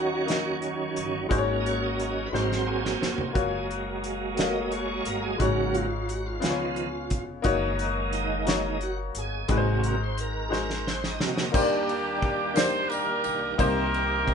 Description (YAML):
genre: slow gospel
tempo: 59 BPM (dotted quarters)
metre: 6/8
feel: straight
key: unclear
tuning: A4 = 444 Hz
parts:
  - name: clear grand piano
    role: accompaniment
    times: 0.0-14.3 s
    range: Ab2 to Eb5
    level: -29 LUFS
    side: left 4 dB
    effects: none
  - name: bright tonewheel organ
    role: sustained chords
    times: 0.0-14.3 s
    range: C3 to Eb5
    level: -30 LUFS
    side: right 3 dB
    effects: slow rotary speaker, chorus vibrato
  - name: upright bass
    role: bass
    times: 0.0-14.3 s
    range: F1 to Eb2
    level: -33 LUFS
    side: equal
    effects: none
  - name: warm soul drum kit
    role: drums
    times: 0.3-14.3 s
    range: crash cymbal, hi-hat, kick drum, ride cymbal, snare drum, toms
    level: -30 LUFS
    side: equal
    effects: none
  - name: warm horn section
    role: melody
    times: 11.5-14.3 s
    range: Bb3 to C5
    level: -27 LUFS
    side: right 2 dB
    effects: none
  - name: tambourine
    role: percussion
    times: 11.5-13.9 s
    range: none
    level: -40 LUFS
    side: right 7 dB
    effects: none
room: moderate studio reverb, RT60 0.5 s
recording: band playing live in one room, nothing above 11.0 kHz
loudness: -24 LUFS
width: side -6 dB against mid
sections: 0.0-11.5 A section; 11.5-14.3 B section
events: tonewheel organ solo 0.0-11.5; drum fill 2.3-3.4, 10.5-11.5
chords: 0.0 Ebm7; 1.3 Ab7sus4; 2.3 Ab7; 3.4 Gbmaj7; 5.4 Ab7sus4; 6.4 Db7; 7.5 Gb6; 9.5 Ab7; 11.5 Ebmaj7; 13.6 Cm7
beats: 0.28 | 1.31 2.33 | 3.35 4.38 | 5.40 6.43 | 7.45 8.47 | 9.50 10.52 | 11.55 12.57 | 13.59